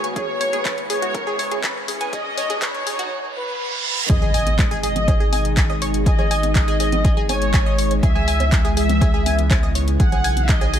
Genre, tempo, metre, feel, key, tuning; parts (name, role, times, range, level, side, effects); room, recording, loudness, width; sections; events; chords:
progressive house; 122 BPM; 4/4; straight; G# minor; A4 = 439 Hz
expressive synth lead; melody; 0.0-10.8 s; B4 to F#5; -26 LUFS; left 1 dB; ensemble chorus, ping-pong delay
dark studio violin section; second line; 0.0-10.8 s; C#5 to F#5; -30 LUFS; left 2 dB; sidechain pumping, ping-pong delay
evolving wavetable pad; sustained chords; 0.0-10.8 s; B2 to B4; -28 LUFS; left 1 dB; chorus, built-in reverb, sidechain pumping
wide unison pluck; arpeggios; 0.0-10.8 s; G#3 to G#6; -27 LUFS; right 1 dB; sidechain pumping, ping-pong delay
house drum kit; drums; 0.0-10.8 s; handclaps, hi-hat; -26 LUFS; left 2 dB; sidechain pumping on hats
riser, reverse cymbal and impact; sound effects; 0.0-6.1 s; -28 LUFS; right 2 dB
twinkling granular texture; texture; 0.0-3.1 s; C#6; -41 LUFS; right 6 dB
electronic kick drum; drums; 0.2-10.6 s; -19 LUFS; equal; overdrive
round analog bass; bass; 4.1-10.8 s; G#1 to C#2; -22 LUFS; equal; sidechain pumping
congas and bongos; percussion; 4.2-10.7 s; -31 LUFS; right 4 dB; sidechain pumping on perc
light reverb, digital ambience; high-pass filter; -17 LUFS; side -10 dB against mid
0.0-4.1 A section; 4.1-10.8 B section
build-up 0.0-4.1; riser 0.0-3.1; filter sweep on synth pluck 0.0-4.1; filter sweep on ambient pad 0.0-4.1; filter sweep 0.0-4.1; reverse cymbal 3.1-4.1; drop 4.1-10.8; impact 4.1-6.1
0.2 C#m7; 2.1 B; 4.1 G#m; 8.0 C#m7; 10.0 B